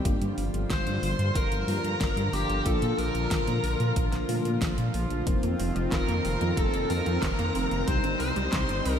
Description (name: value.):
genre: synthwave.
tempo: 92 BPM.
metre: 4/4.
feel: straight.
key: G minor.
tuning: A4 = 439 Hz.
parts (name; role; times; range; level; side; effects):
warm analog pad; sustained chords; 0.0-9.0 s; D3 to F4; -33 LUFS; right 1 dB; chorus, sidechain pumping, shimmer reverb.
mellow FM electric piano; stabs; 0.0-9.0 s; F3 to G4; -35 LUFS; left 3 dB; chorus, phaser, ping-pong delay, shimmer reverb.
dark detuned saw bass; bass; 0.1-9.0 s; F1 to Bb2; -29 LUFS; equal; tube saturation.
electronic kick drum; drums; 0.1-8.7 s; none; -29 LUFS; equal; none.
pop drum kit; drums; 0.1-9.0 s; handclaps, hi-hat, snare drum; -36 LUFS; right 1 dB; none.
dark smooth lead guitar; melody; 0.7-9.0 s; G4 to C5; -32 LUFS; left 2 dB; overdrive, ping-pong delay, shimmer reverb.
string machine, violins; second line; 0.7-9.0 s; G5 to C6; -38 LUFS; right 1 dB; ensemble chorus, ping-pong delay, shimmer reverb.
analog pluck; arpeggios; 5.3-8.9 s; F3 to Eb4; -37 LUFS; right 3 dB; none.
room: moderate lush hall reverb, RT60 2.6 s.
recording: dreamy mix soaked in reverb.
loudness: -24 LUFS.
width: side -8 dB against mid.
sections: 0.0-9.0 A section.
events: none.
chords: 0.1 Gm7; 2.7 Bbmaj7; 5.3 F7sus4; 7.9 Cm.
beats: | 0.05 0.70 1.35 2.01 | 2.66 3.31 3.96 4.62 | 5.27 5.92 6.57 7.22 | 7.88 8.53.